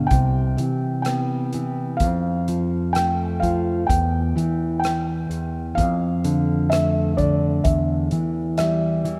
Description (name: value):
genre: acoustic folk-pop ballad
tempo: 64 BPM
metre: 4/4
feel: straight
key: unclear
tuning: A4 = 436 Hz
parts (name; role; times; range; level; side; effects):
- felt-muted upright piano; melody; 0.0-9.2 s; D5 to G5; -28 LUFS; equal; none
- fingerpicked plugged-in steel-string acoustic guitar; accompaniment; 0.0-9.2 s; E2 to B3; -27 LUFS; equal; none
- fingered electric bass; bass; 0.0-9.2 s; C2 to E3; -26 LUFS; equal; none
- loose indie drum kit; drums; 0.1-9.2 s; hi-hat, kick drum, rim click; -28 LUFS; equal; none
room: moderate lush hall reverb, RT60 2.8 s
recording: rough home demo mix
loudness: -22 LUFS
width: mono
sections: 0.0-9.2 A section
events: none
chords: 0.1 Cmaj7; 2.0 F; 3.9 Em; 5.8 Dm/F; 7.7 Em7